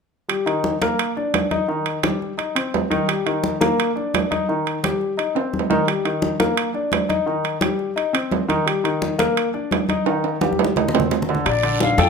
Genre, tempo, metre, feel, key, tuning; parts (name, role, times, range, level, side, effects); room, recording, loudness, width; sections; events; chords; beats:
Afro-Cuban jazz; 172 BPM; 4/4; straight; A4 = 440 Hz
warm concert grand piano; accompaniment; 0.3-12.1 s; D3 to Eb5; -21 LUFS; left 2 dB
congas; percussion; 0.3-12.1 s; -25 LUFS; left 2 dB
timbales; percussion; 0.3-12.1 s; -24 LUFS; right 10 dB
silver concert flute; melody; 11.5-12.1 s; D5 to G5; -20 LUFS; left 6 dB
upright bass; bass; 11.5-12.1 s; Bb1 to F2; -22 LUFS; equal
bongos; percussion; 11.5-12.0 s; -29 LUFS; left 8 dB
guiro; percussion; 11.5-12.1 s; -29 LUFS; right 7 dB
moderate large studio reverb, RT60 0.9 s; minimal, uncompressed stereo recording; -18 LUFS; side -5 dB against mid
0.3-11.5 A section
drum fill 5.4-5.9, 10.1-11.5
0.3 Eb; 1.0 Bbadd11; 1.7 Eb; 2.4 Cm; 3.1 Eb; 3.8 Bbadd11; 4.5 Eb; 5.2 Cm; 5.9 Eb; 6.6 Bbadd11; 7.3 Eb; 8.0 Cm; 8.7 Eb; 9.4 Bbadd11; 10.1 Eb; 10.8 Cmadd9; 11.5 Bbmaj7
| 0.29 0.64 0.99 1.34 | 1.69 2.04 2.39 2.74 | 3.09 3.44 3.79 4.14 | 4.49 4.83 5.18 5.53 | 5.88 6.23 6.58 6.93 | 7.28 7.62 7.97 8.32 | 8.67 9.02 9.37 9.71 | 10.06 10.41 10.76 11.11 | 11.45 11.80